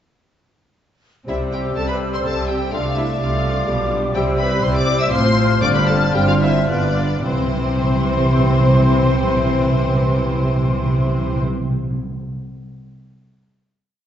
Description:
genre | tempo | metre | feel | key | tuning
quick classical-period movement for symphony orchestra | 101-127 BPM | 3/4 | rubato | C major | A4 = 441 Hz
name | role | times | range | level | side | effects
rich studio violin section | melody | 1.3-11.4 s | C5 to E6 | -26 LUFS | left 3 dB | none
bright small flute group | second line | 1.3-11.4 s | C6 to F6 | -28 LUFS | left 3 dB | none
clear clarinet | second line | 1.3-11.4 s | B4 to D5 | -28 LUFS | left 2 dB | none
dark studio violin section | second line | 1.3-11.4 s | G3 to F4 | -26 LUFS | left 2 dB | none
mellow bassoon | accompaniment | 1.3-11.4 s | D3 to A3 | -25 LUFS | left 1 dB | none
warm studio viola section | accompaniment | 1.3-11.4 s | C4 to E5 | -26 LUFS | equal | none
clear studio cello section | bass | 1.3-11.4 s | G2 to C3 | -24 LUFS | right 2 dB | none
dark studio double bass section | bass | 1.3-11.4 s | G1 to C2 | -23 LUFS | right 1 dB | none
timpani | percussion | 4.1-12.0 s | G2 to C3 | -21 LUFS | right 1 dB | none
room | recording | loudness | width
wet recital hall reverb, RT60 1.7 s | recorded in a church or concert hall, nothing above 7.7 kHz | -16 LUFS | side -10 dB against mid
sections
1.3-7.3 theme; 7.3-10.6 final chord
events
slowing down 3.4-7.3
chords
1.3 C; 2.7 Dm7/C; 3.7 G7/B; 4.1 C; 5.1 F/A; 5.6 G7sus4; 6.7 G7; 7.3 C

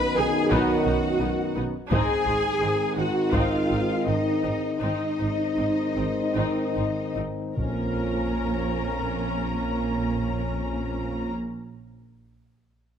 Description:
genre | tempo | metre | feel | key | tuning
cinematic, epic orchestral film score | 72-87 BPM | 4/4 | straight | Bb minor | A4 = 439 Hz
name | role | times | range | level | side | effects
warm studio violin section | melody | 0.0-11.3 s | Eb5 to B5 | -36 LUFS | left 5 dB | none
rich symphonic violin section | second line | 0.0-11.3 s | Eb5 to B5 | -34 LUFS | left 3 dB | none
dark trombone section | sustained chords | 0.0-11.3 s | F2 to F3 | -30 LUFS | right 4 dB | none
mellow French horn section | sustained chords | 0.0-11.3 s | B3 to Eb4 | -31 LUFS | left 6 dB | none
rich symphonic cello section | bass | 0.0-11.3 s | Bb3 to B4 | -28 LUFS | right 1 dB | none
warm studio viola section | accompaniment | 0.2-11.3 s | B3 to Bb4 | -33 LUFS | equal | none
warm studio double bass section | bass | 0.2-11.3 s | Ab1 to B1 | -31 LUFS | right 2 dB | none
taiko ensemble | drums | 0.5-9.2 s | none | -30 LUFS | left 1 dB | none
timpani | percussion | 7.6-11.3 s | Bb2 | -35 LUFS | left 2 dB | none
room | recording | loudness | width
light reverb | close, detailed microphones, faint mains hum | -23 LUFS | side -8 dB against mid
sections
0.0-8.0 A section; 8.0-11.3 B section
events
slowing down 0.5-8.0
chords
0.0 B; 1.9 Ab; 7.6 Bbm

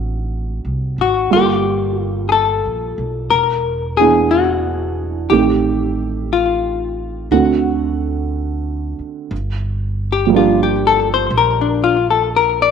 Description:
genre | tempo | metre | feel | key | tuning
jazz ballad | 60 BPM | 4/4 | swing 68% on 8ths | G minor | A4 = 441 Hz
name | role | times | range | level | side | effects
warm upright piano | accompaniment | 0.0-12.7 s | D3 to A4 | -18 LUFS | right 9 dB | none
upright bass | bass | 0.0-12.7 s | E1 to D2 | -22 LUFS | right 1 dB | none
hollow-body jazz guitar | melody | 1.0-12.7 s | D4 to D5 | -16 LUFS | left 8 dB | slapback echo
room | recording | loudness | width
wet spring reverb, RT60 2.0 s, small room ambience | 1960s-style stereo with parts hard left and right | -14 LUFS | side -7 dB against mid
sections
0.0-9.3 A section; 9.3-12.7 B section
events
hollow-body jazz guitar solo 9.3-12.7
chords
0.0 D7; 1.3 Gm9; 3.3 E7; 5.3 Am7b5; 7.3 D7; 9.3 Gm7

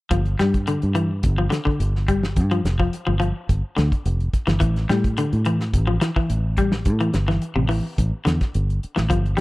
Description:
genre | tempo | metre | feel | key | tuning
afrobeat | 107 BPM | 4/4 | straight | unclear | A4 = 440 Hz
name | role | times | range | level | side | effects
electric guitar at the edge of break-up | arpeggios | 0.1-9.4 s | C3 to G3 | -24 LUFS | left 2 dB | spring reverb
fingered electric bass | bass | 0.1-9.3 s | F1 to A2 | -21 LUFS | equal | none
warm soul drum kit | drums | 0.1-9.4 s | hi-hat, kick drum, snare drum | -23 LUFS | equal | none
room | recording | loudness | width
little or no reverb | dry, close 1970s-style studio recording | -19 LUFS | side -19 dB against mid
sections
0.1-9.4 A section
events
none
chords
0.1 G5; 4.6 A7(no3)

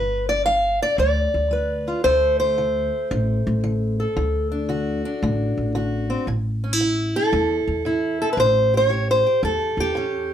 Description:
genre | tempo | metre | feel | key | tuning
acoustic country blues, solo or duo | 114 BPM | 4/4 | swing 67% on 8ths | D mixolydian | A4 = 438 Hz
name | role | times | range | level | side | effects
fingerpicked steel-string acoustic guitar | melody | 0.0-10.3 s | A2 to F5 | -20 LUFS | equal | none
upright bass | bass | 0.0-10.3 s | G1 to E2 | -24 LUFS | equal | none
room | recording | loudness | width
wet small room reverb, RT60 0.5 s | heard from further back in the room | -19 LUFS | side -9 dB against mid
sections
0.0-10.3 A section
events
none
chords
0.0 G7; 2.0 D7; 6.3 A7(no3)

